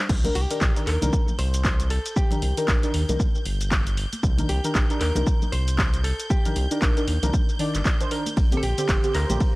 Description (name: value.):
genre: deep house.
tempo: 116 BPM.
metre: 4/4.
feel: swing 59% on 16ths.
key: unclear.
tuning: A4 = 442 Hz.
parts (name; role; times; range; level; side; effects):
round analog bass; bass; 0.1-9.4 s; G1 to Eb2; -25 LUFS; equal; sidechain pumping.
electronic kick drum; drums; 0.1-9.5 s; none; -23 LUFS; equal; none.
punchy analog drum machine; drums; 0.1-9.5 s; crash cymbal, handclaps, hi-hat, ride cymbal, shaker; -30 LUFS; equal; none.
clear studio violin section; texture; 0.1-9.6 s; G6; -38 LUFS; right 2 dB; sidechain pumping.
deep mellow chord stab; stabs; 0.2-9.4 s; D3 to D5; -28 LUFS; equal; chorus, sidechain pumping, analog delay.
congas; percussion; 0.2-9.4 s; none; -33 LUFS; equal; sidechain pumping on perc.
hollow-body jazz guitar; melody; 0.4-9.6 s; G4 to C5; -33 LUFS; equal; analog delay.
warbly tape-like pad; texture; 8.7-9.6 s; G4 to C6; -35 LUFS; right 2 dB; chorus, built-in reverb, sidechain pumping.
room: digital ambience.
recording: dry, gritty hardware recording, transformer saturation, vinyl crackle.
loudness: -20 LUFS.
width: side -21 dB against mid.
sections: 0.1-9.6 A section.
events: drop 0.1-9.6.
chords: 0.1 Cm9; 8.4 Bb69.